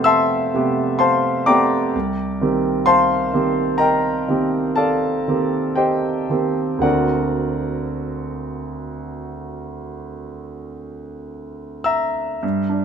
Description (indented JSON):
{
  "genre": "classical, impressionist solo piano",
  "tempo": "48-65 BPM",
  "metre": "5/4",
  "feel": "rubato",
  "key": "unclear",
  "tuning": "A4 = 440 Hz",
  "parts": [
    { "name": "clear concert grand piano", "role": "solo", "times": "0.0-12.8 s", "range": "C2 to E6", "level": "-18 LUFS", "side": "equal", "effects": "none" }
  ],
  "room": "light reverb",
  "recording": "none",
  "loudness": "-17 LUFS",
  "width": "side -7 dB against mid",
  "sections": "0.0-12.4 A section",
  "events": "none",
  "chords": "0.0 Am11/F; 1.9 Cm9; 6.8 Daug7"
}